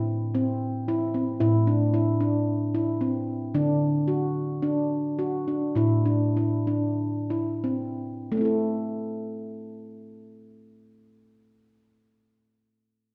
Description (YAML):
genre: world meditative, meditative tuned percussion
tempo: 84-113 BPM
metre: 4/4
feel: straight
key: A dorian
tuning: A4 = 440 Hz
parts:
  - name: handpan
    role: solo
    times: 0.0-11.6 s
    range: A2 to A4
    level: -26 LUFS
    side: equal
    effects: none
room: wet recital hall reverb, RT60 1.5 s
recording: dark, warm production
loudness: -26 LUFS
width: mono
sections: 0.0-8.3 A section; 8.3-13.1 B section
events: slowing down 3.5-8.3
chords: 0.0 Am; 3.5 D; 5.8 Am